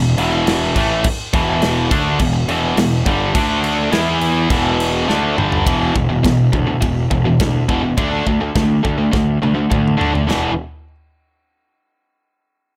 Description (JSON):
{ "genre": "heavy metal", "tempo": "104 BPM", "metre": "4/4", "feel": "straight", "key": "E minor", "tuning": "A4 = 440 Hz", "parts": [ { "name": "tight distorted guitar", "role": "riff", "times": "0.0-10.5 s", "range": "E2 to E4", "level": "-18 LUFS", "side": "equal", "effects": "distortion" }, { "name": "fuzz picked electric bass", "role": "bass", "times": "0.0-10.5 s", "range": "E1 to D3", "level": "-24 LUFS", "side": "equal", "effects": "overdrive" }, { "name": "modern studio drum kit", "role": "drums", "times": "0.2-10.4 s", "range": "crash cymbal, kick drum, ride cymbal, snare drum, splash cymbal, toms", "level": "-23 LUFS", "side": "equal", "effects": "none" } ], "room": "little or no reverb", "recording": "none", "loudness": "-17 LUFS", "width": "mono", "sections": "0.0-5.7 A section; 5.7-10.3 B section; 10.3-12.6 C section", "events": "drum fill 5.1-5.7, 9.1-10.3", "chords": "0.0 Em; 3.3 D5; 3.9 Em; 5.7 E5; 8.0 D5; 10.3 E5", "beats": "0.47 | 1.04 1.62 2.19 2.77 | 3.35 3.92 4.50 5.08 | 5.65 6.23 6.81 7.38 | 7.96 8.54 9.12 9.70 | 10.28" }